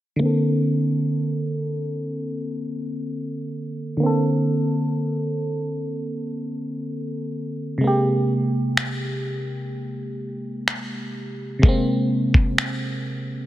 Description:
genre	contemporary R&B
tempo	63 BPM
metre	4/4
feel	straight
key	Bb major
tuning	A4 = 444 Hz
part	FM electric piano	accompaniment	0.2-13.5 s	C3 to A4	-22 LUFS	equal	chorus, low-pass filter
part	dusty soul sampler-style drum kit	drums	8.8-12.8 s	finger snaps, kick drum	-19 LUFS	equal	soft clipping on snare
room	light reverb, digital ambience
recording	dense, heavily limited modern master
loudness	-21 LUFS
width	side -14 dB against mid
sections	0.2-13.5 A section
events	filter sweep on FM electric piano 0.2-13.5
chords	0.2 Bbmaj9; 7.8 Abmaj9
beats	| 0.20 1.16 2.11 3.06 | 4.01 4.97 5.92 6.87 | 7.82 8.78 9.73 10.68 | 11.63 12.59

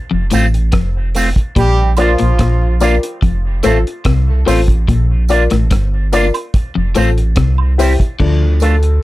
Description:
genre	roots reggae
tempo	72 BPM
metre	4/4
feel	straight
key	unclear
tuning	A4 = 439 Hz
part	electric guitar at the edge of break-up	riff	0.1-8.4 s	F2 to D3	-17 LUFS	left 3 dB	none
part	soft dub sub bass	bass	0.1-9.0 s	F1 to D2	-14 LUFS	equal	none
part	electric guitar with an envelope filter	accompaniment	0.3-8.8 s	G3 to F4	-21 LUFS	right 2 dB	lush chorus, dub echo
part	cloth-damped thuddy drum kit	drums	0.3-9.0 s	crash cymbal, hi-hat, kick drum, rim click	-16 LUFS	equal	none
part	tambourine and woodblock	percussion	0.3-8.8 s	none	-27 LUFS	right 11 dB	none
part	warm horn section	second line	1.6-3.8 s	F3 to A4	-20 LUFS	right 2 dB	dub echo
part	warm upright piano	stabs	2.0-9.0 s	F3 to D5	-17 LUFS	left 5 dB	none
room	little or no reverb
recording	none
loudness	-11 LUFS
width	side -17 dB against mid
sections	0.0-8.2 A section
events	none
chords	0.0 F; 1.6 Bb; 3.2 F; 4.9 Bb; 6.5 F; 7.4 C; 8.2 Dm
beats	0.73 | 1.56 2.39 3.22 4.05 | 4.88 5.71 6.54 7.37 | 8.20

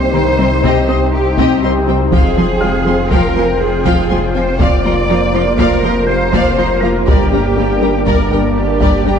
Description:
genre	cinematic, hybrid orchestral and electronic film score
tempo	121 BPM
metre	5/4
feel	straight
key	C minor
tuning	A4 = 444 Hz
part	sweeping resonant pad	sustained chords	0.0-9.2 s	Bb3 to G5	-17 LUFS	left 1 dB	chorus
part	resonant blip pluck	arpeggios	0.0-9.2 s	C3 to Bb4	-22 LUFS	left 2 dB	chorus, phaser, tape echo
part	detuned saw bass	bass	0.0-9.2 s	F1 to C2	-18 LUFS	equal	none
part	rich symphonic cello section	bass	0.0-9.2 s	F4 to D5	-18 LUFS	right 1 dB	none
part	warm symphonic viola section	accompaniment	0.1-9.1 s	F3 to C4	-20 LUFS	right 1 dB	none
part	felt-muted upright piano	texture	0.1-9.2 s	Bb4 to Bb6	-28 LUFS	left 1 dB	tape echo
part	warm symphonic violin section	second line	0.2-9.1 s	G4 to C6	-22 LUFS	left 2 dB	none
part	taiko ensemble	drums	0.6-9.2 s	none	-18 LUFS	equal	none
room	moderate scoring stage reverb, RT60 1.7 s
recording	dark, warm production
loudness	-11 LUFS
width	side -7 dB against mid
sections	0.0-9.2 A section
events	none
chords	0.0 Cm; 2.1 Fmadd9; 4.6 Bbadd9/F; 7.1 Gm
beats	0.14 0.63 1.13 1.63 | 2.12 2.62 3.11 3.61 4.11 | 4.60 5.10 5.59 6.09 6.58 | 7.08 7.58 8.07 8.57 9.06

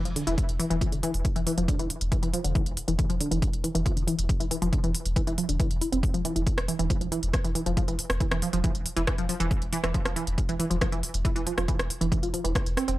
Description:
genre	driving peak-time techno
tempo	138 BPM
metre	4/4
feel	straight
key	unclear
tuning	A4 = 444 Hz
part	tight sequenced synth	riff	0.1-12.9 s	D3 to E4	-29 LUFS	equal	chorus, sidechain pumping, analog delay
part	saturated sub bass	bass	0.1-13.0 s	E1	-30 LUFS	equal	tube saturation, sidechain pumping, low-pass filter
part	techno drum kit	drums	0.1-13.0 s	hi-hat, rim click	-32 LUFS	equal	overdrive, sidechain pumping on hats, sidechain pumping on cymbals
part	electronic kick drum	drums	0.4-12.6 s	none	-28 LUFS	equal	none
room	little or no reverb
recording	dry, gritty hardware recording, transformer saturation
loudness	-24 LUFS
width	side -16 dB against mid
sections	0.0-13.0 A section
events	none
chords	none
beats	0.38 0.81 | 1.25 1.68 2.12 2.55 | 2.99 3.42 3.86 4.29 | 4.73 5.16 5.60 6.03 | 6.47 6.90 7.33 7.77 | 8.21 8.64 9.07 9.51 | 9.94 10.38 10.81 11.25 | 11.68 12.12 12.55

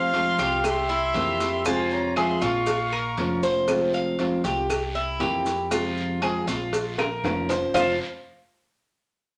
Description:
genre	latin, Cuban son and guajira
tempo	118 BPM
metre	4/4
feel	straight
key	F harmonic minor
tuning	A4 = 443 Hz
part	mellow trumpet	melody	0.0-3.4 s	C5 to F5	-30 LUFS	equal	none
part	rich erhu	second line	0.0-3.4 s	Ab5 to Db6	-33 LUFS	equal	none
part	flamenco guitar	accompaniment	0.0-8.0 s	F2 to F4	-30 LUFS	equal	none
part	Cuban tres	arpeggios	0.0-8.0 s	E4 to F5	-29 LUFS	equal	none
part	upright bass	bass	0.0-8.0 s	F1 to F2	-37 LUFS	equal	none
part	cowbell and bongos	percussion	0.1-7.9 s	none	-33 LUFS	equal	none
part	guiro	percussion	0.1-7.9 s	none	-42 LUFS	equal	none
part	maracas	percussion	0.1-7.9 s	none	-44 LUFS	equal	none
part	claves	percussion	0.6-7.9 s	none	-38 LUFS	equal	none
room	wet studio reverb, RT60 0.8 s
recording	none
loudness	-25 LUFS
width	mono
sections	0.0-7.8 A section; 7.8-9.4 B section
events	drum fill 7.0-7.8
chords	0.0 Fm; 0.6 C7; 1.7 Fm; 2.7 Bbm; 3.7 Fm; 4.7 C7; 5.7 Fm; 6.7 Bbm; 7.8 Fm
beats	0.13 0.64 1.15 | 1.66 2.16 2.67 3.18 | 3.69 4.19 4.70 5.21 | 5.72 6.23 6.73 7.24 | 7.75

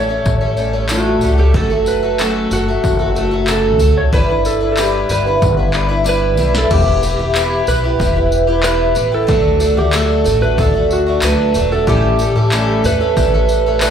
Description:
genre	acoustic pop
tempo	93 BPM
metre	4/4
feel	straight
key	A mixolydian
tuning	A4 = 440 Hz
part	electric slide guitar	melody	0.0-13.9 s	F#4 to C#5	-17 LUFS	right 5 dB	slapback echo
part	picked twelve-string acoustic guitar	accompaniment	0.0-13.9 s	F#2 to B4	-17 LUFS	left 3 dB	slapback echo
part	upright bass	bass	0.0-13.9 s	E1 to E2	-17 LUFS	equal	none
part	punchy analog drum machine	drums	0.3-13.9 s	crash cymbal, handclaps, kick drum, snare drum, tambourine	-20 LUFS	left 1 dB	none
part	tambourine	percussion	0.3-13.9 s	none	-29 LUFS	left 3 dB	none
room	light reverb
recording	live gig heard through the venue's PA, club reverb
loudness	-12 LUFS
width	side -8 dB against mid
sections	0.0-6.7 A section; 6.7-13.9 B section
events	drum fill 6.1-6.7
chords	0.0 A7; 1.5 F#m; 4.1 G6; 6.7 Em; 9.3 D; 11.9 A7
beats	0.26 0.90 | 1.55 2.19 2.84 3.48 | 4.13 4.77 5.42 6.06 | 6.71 7.35 8.00 8.64 | 9.29 9.94 10.58 11.23 | 11.87 12.52 13.17 13.82

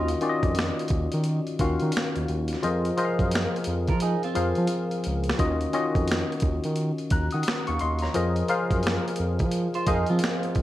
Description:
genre	R&B, neo-soul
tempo	87 BPM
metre	4/4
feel	swing 62% on 16ths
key	Eb dorian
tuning	A4 = 440 Hz
part	clean electric guitar	second line	0.0-5.2, 9.8-10.6 s	C4 to C5	-31 LUFS	right 6 dB	wide subtle chorus, slapback echo
part	barky tine electric piano	accompaniment	0.0-10.6 s	Eb3 to Gb6	-26 LUFS	left 2 dB	analog chorus
part	smooth synth bass	bass	0.0-10.6 s	Db2 to F3	-27 LUFS	right 1 dB	none
part	boom bap sampler-style drum kit	drums	0.1-10.6 s	hi-hat, kick drum, snare drum	-28 LUFS	right 1 dB	none
room	little or no reverb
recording	none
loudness	-23 LUFS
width	side -14 dB against mid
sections	0.0-10.6 A section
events	drum fill 4.0-5.4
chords	0.0 Ebm9; 2.6 Bb9sus4/F; 5.4 Ebm9; 8.1 Bb9sus4/F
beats	0.56 1.25 1.94 | 2.63 3.32 4.01 4.70 | 5.39 6.08 6.77 7.46 | 8.15 8.84 9.53 10.22

